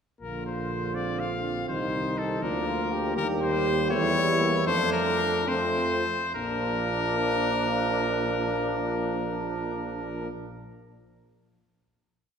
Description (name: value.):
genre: classical, brass quintet.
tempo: 68-82 BPM (dotted quarters).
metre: 6/8.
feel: straight.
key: Bb major.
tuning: A4 = 440 Hz.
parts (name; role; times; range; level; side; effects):
bright trumpet; melody; 0.2-10.3 s; A4 to F5; -29 LUFS; left 4 dB; none.
mellow flugelhorn; second line; 0.2-10.3 s; C4 to G4; -32 LUFS; right 3 dB; none.
clear trombone; accompaniment; 0.2-10.3 s; D3 to G3; -34 LUFS; right 3 dB; none.
mellow French horn; accompaniment; 0.2-10.3 s; G3 to C4; -33 LUFS; left 2 dB; none.
warm bass trombone; bass; 0.2-10.3 s; Bb1 to F2; -32 LUFS; right 1 dB; none.
room: wet concert hall reverb, RT60 1.9 s.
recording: recorded in a church or concert hall.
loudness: -24 LUFS.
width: side -7 dB against mid.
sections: 0.2-6.3 A section; 6.3-9.8 final chord.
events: slowing down 2.4-6.3.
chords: 0.2 Bb; 1.7 Cm6; 2.4 Bb/D; 3.2 Eb; 3.9 Edim7; 4.7 Bb/F; 6.3 Bb.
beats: | 0.21 0.95 | 1.69 2.43 | 3.16 3.90 | 4.67 5.48 | 6.34 7.21 | 8.06 8.92.